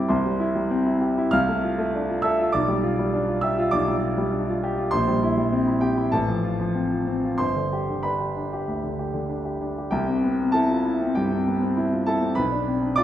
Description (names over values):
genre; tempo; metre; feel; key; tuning
classical, virtuoso piano study; 92-102 BPM; 4/4; rubato; C major; A4 = 440 Hz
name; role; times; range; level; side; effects
warm grand piano; solo; 0.0-13.0 s; G1 to F6; -21 LUFS; equal; none
room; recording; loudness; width
wet recital hall reverb, RT60 1.6 s; heard from further back in the room; -21 LUFS; side -11 dB against mid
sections
0.0-9.9 A section; 9.9-13.0 B section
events
none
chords
0.0 C; 1.3 Dm7/C; 2.5 G7/B; 4.9 C7/Bb; 6.1 F/A; 7.4 G; 9.9 C; 12.4 Bm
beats
| 0.11 0.70 1.32 1.93 | 2.53 3.12 3.72 4.32 | 4.92 5.52 6.13 6.75 | 7.39 8.03 8.67 9.30 | 9.93 10.55 11.17 11.78 | 12.39 12.99